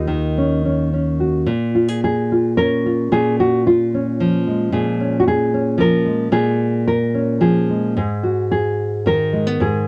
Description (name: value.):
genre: folk, solo fingerstyle acoustic guitar.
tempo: 110 BPM.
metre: 3/4.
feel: rubato.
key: unclear.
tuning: A4 = 440 Hz.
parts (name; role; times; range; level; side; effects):
nylon-string guitar; solo; 0.0-9.9 s; Eb2 to Bb4; -18 LUFS; equal; none.
room: moderate booth ambience, RT60 0.2 s.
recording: worn, warbling old tape, cassette tape, warbly pitch drift.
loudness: -18 LUFS.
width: mono.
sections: 0.0-1.5 A section; 1.5-9.9 B section.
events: none.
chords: 0.0 Ebm7; 1.5 Bbm7; 8.0 Ab7(no3).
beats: 0.35 0.91 | 1.47 2.03 2.57 | 3.11 3.66 4.19 | 4.72 5.25 5.78 | 6.31 6.86 7.41 | 7.97 8.52 9.07 | 9.61.